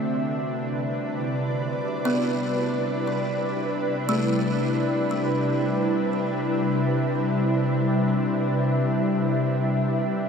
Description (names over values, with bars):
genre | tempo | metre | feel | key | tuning
ambient | free time | none | none | C lydian | A4 = 440 Hz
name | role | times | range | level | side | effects
ethereal airy pad | sustained chords | 0.0-10.3 s | C3 to E5 | -23 LUFS | equal | ensemble chorus, built-in reverb
bowed-like drone | drone | 0.0-10.3 s | C3 to D4 | -31 LUFS | left 1 dB | built-in reverb
buzzing kalimba | arpeggios | 2.1-6.2 s | A3 to B3 | -30 LUFS | left 1 dB | ping-pong delay
room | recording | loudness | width
wet huge ambient reverb, RT60 7.7 s | dreamy mix soaked in reverb | -22 LUFS | side -6 dB against mid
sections
0.0-10.3 A section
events
none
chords
0.0 Cmaj9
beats
free time